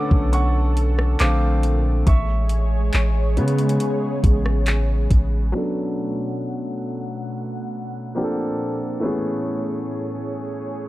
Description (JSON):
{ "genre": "contemporary R&B", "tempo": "69 BPM", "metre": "4/4", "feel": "straight", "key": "B dorian", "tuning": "A4 = 440 Hz", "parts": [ { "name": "clear grand piano", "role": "accompaniment", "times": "0.0-10.9 s", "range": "C#3 to E6", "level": "-25 LUFS", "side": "equal", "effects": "low-pass filter" }, { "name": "lush unison pad", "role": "sustained chords", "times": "0.0-10.9 s", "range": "A2 to F#5", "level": "-30 LUFS", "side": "equal", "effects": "chorus, sidechain pumping, low-pass filter" }, { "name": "long sustained 808-style bass", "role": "bass", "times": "0.1-5.5 s", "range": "A1 to C#3", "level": "-19 LUFS", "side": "equal", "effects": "none" }, { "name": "smooth R&B drum kit", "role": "drums", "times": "0.1-5.3 s", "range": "handclaps, hi-hat, kick drum, rim click", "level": "-19 LUFS", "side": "equal", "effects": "none" } ], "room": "little or no reverb", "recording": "none", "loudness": "-19 LUFS", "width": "side -17 dB against mid", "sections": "0.0-5.5 A section; 5.5-10.9 B section", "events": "grand piano solo 0.0-5.5; filter sweep 5.5-10.9", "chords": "0.0 Bm7; 1.2 A#maj7; 2.1 Amaj7; 5.5 Bm7; 8.2 A#maj7; 9.0 Amaj7" }